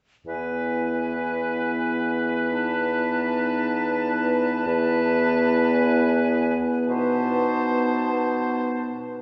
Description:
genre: classical, slow romantic movement for wind quintet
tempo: 54 BPM (dotted quarters)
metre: 6/8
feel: uneven beats, rubato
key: E major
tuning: A4 = 440 Hz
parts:
  - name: silver concert flute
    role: melody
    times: 0.3-8.9 s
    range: G#5 to A5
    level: -34 LUFS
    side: equal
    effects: none
  - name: clear oboe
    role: second line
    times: 0.3-8.9 s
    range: B4 to C5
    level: -31 LUFS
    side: equal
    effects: none
  - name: warm French horn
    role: accompaniment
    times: 0.3-8.9 s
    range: B3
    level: -29 LUFS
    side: equal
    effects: none
  - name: warm clarinet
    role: accompaniment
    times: 0.3-8.9 s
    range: D#4 to E4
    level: -34 LUFS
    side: equal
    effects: none
  - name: mellow bassoon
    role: bass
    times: 0.3-8.9 s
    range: E2 to B2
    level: -28 LUFS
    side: equal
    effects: none
room: wet cathedral reverb, RT60 5.5 s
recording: recorded in a church or concert hall, nothing above 8.0 kHz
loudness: -23 LUFS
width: mono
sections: 0.3-9.2 A section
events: none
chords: 0.3 E; 2.5 B7/E; 4.7 E; 6.9 B7b9

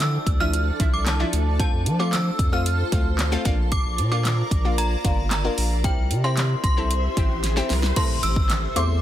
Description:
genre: dance-pop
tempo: 113 BPM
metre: 4/4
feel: straight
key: F major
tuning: A4 = 440 Hz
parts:
  - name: synth chime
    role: melody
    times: 0.0-8.9 s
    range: G5 to F6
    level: -28 LUFS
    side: right 1 dB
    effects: ensemble chorus, ping-pong delay
  - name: analog pluck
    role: accompaniment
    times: 0.0-9.0 s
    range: F3 to C5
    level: -29 LUFS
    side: left 2 dB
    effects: chorus, sidechain pumping
  - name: granular cloud pad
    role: sustained chords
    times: 0.0-9.0 s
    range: D4 to C6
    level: -32 LUFS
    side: equal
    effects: built-in reverb, sidechain pumping
  - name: saturated sub bass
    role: bass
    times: 0.0-9.0 s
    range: G1 to F3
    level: -23 LUFS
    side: equal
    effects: sidechain pumping
  - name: pop drum kit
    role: drums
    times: 0.0-8.9 s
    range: crash cymbal, handclaps, hi-hat, kick drum, snare drum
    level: -24 LUFS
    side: equal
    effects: none
  - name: riser and impact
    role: sound effects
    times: 6.6-9.0 s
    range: none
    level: -33 LUFS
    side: right 1 dB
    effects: none
room: little or no reverb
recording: dense, heavily limited modern master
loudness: -20 LUFS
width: side -12 dB against mid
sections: 0.0-8.0 A section; 8.0-9.0 B section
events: riser 6.6-8.0; drum fill 7.4-8.0; impact 8.0-9.0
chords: 0.0 Dmadd9; 1.6 F; 3.5 Bb; 5.8 C; 8.0 Am

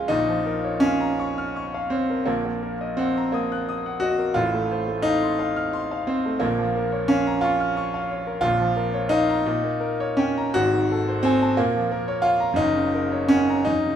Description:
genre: classical, romantic character piece for solo piano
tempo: 51-61 BPM (dotted quarters)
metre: 6/8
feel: rubato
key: Bb minor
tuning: A4 = 440 Hz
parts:
  - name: clear grand piano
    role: solo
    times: 0.0-14.0 s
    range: Gb1 to Gb6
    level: -20 LUFS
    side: equal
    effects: none
room: moderate recital hall reverb, RT60 1.4 s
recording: minimal, uncompressed stereo recording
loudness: -20 LUFS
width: side -9 dB against mid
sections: 0.1-14.0 A section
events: none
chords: 0.1 Bbm; 2.3 Ebm/Bb; 4.4 F7/A; 6.4 Bbm; 9.5 Eb7/Bb; 10.6 Ab7b9; 11.6 Bbm; 12.6 Gb

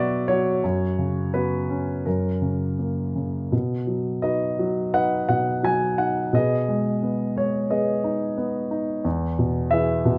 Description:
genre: classical, lyrical solo piano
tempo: 80-90 BPM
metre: 4/4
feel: rubato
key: B major from 3.5 s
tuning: A4 = 439 Hz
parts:
  - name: warm grand piano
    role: solo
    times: 0.0-10.2 s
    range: E2 to G#5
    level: -24 LUFS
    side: equal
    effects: none
room: light reverb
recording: close, detailed microphones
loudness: -24 LUFS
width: mono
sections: 0.0-3.5 A section; 3.5-10.2 B section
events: none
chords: 0.0 Bm; 0.6 F#sus4; 2.1 F#; 3.5 B; 6.3 G#m/B; 9.1 E

